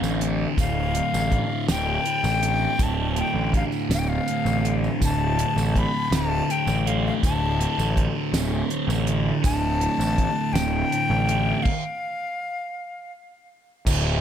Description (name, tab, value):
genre	psychedelic rock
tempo	54 BPM (dotted quarters)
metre	6/8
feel	straight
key	D minor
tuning	A4 = 440 Hz
part	breathy bright jazz flute	melody	0.0-13.1 s	F5 to B5	-27 LUFS	left 3 dB	tape echo
part	thick fuzz guitar	riff	0.0-14.2 s	D2 to D3	-25 LUFS	right 1 dB	distortion, phaser
part	fuzz picked electric bass	bass	0.0-14.2 s	D1 to A1	-25 LUFS	equal	overdrive
part	tambourine	percussion	0.0-14.0 s	none	-38 LUFS	right 10 dB	none
part	damped 70s drum kit	drums	0.2-14.0 s	crash cymbal, hi-hat, kick drum, snare drum	-25 LUFS	equal	none
room	light reverb, small room reverb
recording	none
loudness	-21 LUFS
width	side -9 dB against mid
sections	0.0-13.9 A section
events	stop 11.7-13.9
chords	0.0 Dm